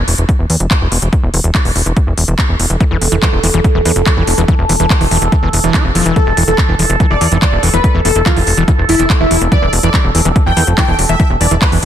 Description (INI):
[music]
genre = psychedelic trance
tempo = 143 BPM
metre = 4/4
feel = straight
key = unclear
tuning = A4 = 437 Hz
[part]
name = overtone-sweeping drone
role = sustained chords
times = 2.7-11.8 s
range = A4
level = -20 LUFS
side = right 2 dB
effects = chorus, built-in reverb, sidechain pumping
[part]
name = plucky analog bass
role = bass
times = 0.0-11.8 s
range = E1 to E2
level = -14 LUFS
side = equal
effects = none
[part]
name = techno drum kit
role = drums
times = 0.1-11.8 s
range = handclaps, hi-hat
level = -18 LUFS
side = equal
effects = none
[part]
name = electronic kick drum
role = drums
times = 0.3-11.7 s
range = none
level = -12 LUFS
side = equal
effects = none
[part]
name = overdriven acid bass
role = riff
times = 2.8-11.8 s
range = E3 to E4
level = -19 LUFS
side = moving between left 4 dB and right 5 dB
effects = distortion, auto-pan, vintage 12-bit sampler grit, sidechain pumping, dub echo
[part]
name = wide unison lead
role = melody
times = 6.2-11.7 s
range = E4 to G5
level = -17 LUFS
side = left 1 dB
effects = phaser, sidechain pumping, digital delay
[sound]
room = light reverb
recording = dense, heavily limited modern master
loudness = -10 LUFS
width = side -10 dB against mid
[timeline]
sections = 0.0-11.8 A section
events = none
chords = 0.0 E5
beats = 0.29 0.71 | 1.13 1.55 1.97 2.39 | 2.81 3.23 3.64 4.06 | 4.48 4.90 5.32 5.74 | 6.16 6.58 7.00 7.42 | 7.84 8.26 8.68 9.10 | 9.52 9.94 10.36 10.78 | 11.20 11.62